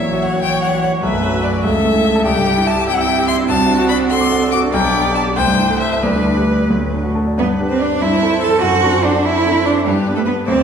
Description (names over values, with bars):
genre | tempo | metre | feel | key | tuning
quick classical-period movement for piano quartet | 97 BPM (dotted quarters) | 6/8 | rubato | G major | A4 = 440 Hz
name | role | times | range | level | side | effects
clear violin | melody | 0.0-10.6 s | G4 to D6 | -20 LUFS | left 6 dB | none
rich cello | second line | 0.0-10.6 s | E3 to A4 | -18 LUFS | right 5 dB | none
clear grand piano | accompaniment | 0.0-10.6 s | A#1 to E6 | -17 LUFS | left 1 dB | none
clear viola | accompaniment | 0.0-10.6 s | E4 to D5 | -22 LUFS | right 2 dB | none
room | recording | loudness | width
wet recital hall reverb, RT60 1.6 s | recorded in a church or concert hall, lossy compression artefacts | -13 LUFS | side -7 dB against mid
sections
0.0-7.4 A section; 7.4-10.6 B section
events
none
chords
0.0 F#7/A#; 1.0 Bm; 1.6 A/C#; 2.3 C; 3.5 D7/C; 4.7 G/B; 5.4 Am7/C; 6.0 G/D; 6.7 D; 7.4 G; 8.0 Am7/G; 8.6 D7/F#; 9.9 G